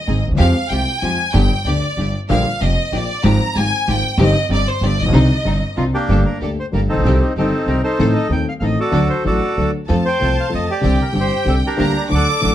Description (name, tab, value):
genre	tango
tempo	190 BPM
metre	3/4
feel	rubato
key	C minor, G minor from 6.1 s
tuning	A4 = 439 Hz
part	clear studio violin section	second line	0.0-5.8, 9.9-12.5 s	C5 to D6	-22 LUFS	equal	none
part	warm grand piano	accompaniment	0.1-12.5 s	Eb1 to A4	-19 LUFS	left 2 dB	none
part	rich studio string section	stabs	0.1-12.5 s	Ab3 to A4	-28 LUFS	equal	none
part	upright bass	bass	0.1-12.5 s	F1 to F2	-19 LUFS	right 1 dB	none
part	bandoneon	melody	5.8-12.5 s	Bb3 to G5	-20 LUFS	equal	none
room	light reverb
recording	dark, warm production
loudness	-14 LUFS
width	side -12 dB against mid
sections	0.0-6.1 A section; 6.1-12.5 B section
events	violin section solo 0.0-6.1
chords	0.4 Fmadd9; 1.3 G; 2.3 Bb6; 3.2 Fmadd9/Ab; 4.2 Cm/G; 4.8 G; 5.1 Cmadd9; 6.1 Gmadd9; 7.0 Cm; 8.0 Adim; 8.9 D; 9.9 F; 10.8 Csus2; 11.8 Gm/D